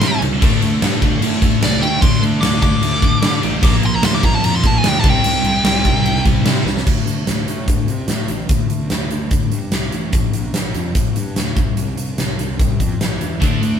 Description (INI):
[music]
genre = hard rock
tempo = 148 BPM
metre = 4/4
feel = straight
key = D minor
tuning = A4 = 440 Hz
[part]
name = smooth overdriven lead guitar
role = melody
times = 0.0-6.2 s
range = D5 to D6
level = -19 LUFS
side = right 1 dB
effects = none
[part]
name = crunchy overdriven guitar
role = riff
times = 0.0-6.8, 13.4-13.8 s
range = Bb2 to D4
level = -26 LUFS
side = left 5 dB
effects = none
[part]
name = high-gain distorted guitar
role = riff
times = 0.0-6.7, 13.4-13.8 s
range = Bb2 to D4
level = -24 LUFS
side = right 1 dB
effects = distortion
[part]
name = sludgy distorted guitar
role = riff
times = 0.0-6.8, 13.4-13.8 s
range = Bb2 to D4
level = -23 LUFS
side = right 8 dB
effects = overdrive
[part]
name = fuzz picked electric bass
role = bass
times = 0.0-13.8 s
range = A1 to D3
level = -23 LUFS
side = right 1 dB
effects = overdrive
[part]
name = huge arena drum kit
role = drums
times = 0.0-13.7 s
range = crash cymbal, hi-hat, kick drum, snare drum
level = -16 LUFS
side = left 1 dB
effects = none
[sound]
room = light reverb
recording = band playing live in one room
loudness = -14 LUFS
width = side -8 dB against mid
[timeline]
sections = 0.0-6.9 A section; 6.9-13.8 B section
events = lead electric guitar solo 0.0-6.9; drum fill 6.7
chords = 0.4 D5; 3.6 Bb; 5.0 C5; 6.9 D5; 10.1 Bb; 11.6 N.C.